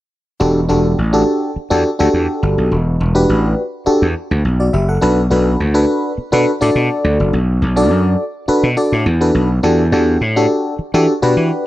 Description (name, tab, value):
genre	early-eighties boogie funk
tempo	104 BPM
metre	4/4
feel	straight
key	E minor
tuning	A4 = 439 Hz
part	FM electric piano	accompaniment	0.4-11.7 s	D4 to F#5	-15 LUFS	equal	chorus
part	gritty slap bass	bass	0.4-11.5 s	E1 to E3	-15 LUFS	equal	overdrive
room	light reverb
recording	none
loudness	-12 LUFS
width	side -15 dB against mid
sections	0.4-11.7 A section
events	none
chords	0.4 Em11; 5.0 Bm7; 9.6 Em11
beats	| 0.41 0.98 1.56 2.14 | 2.71 3.29 3.87 4.44 | 5.02 5.60 6.17 6.75 | 7.33 7.91 8.48 9.06 | 9.64 10.21 10.79 11.37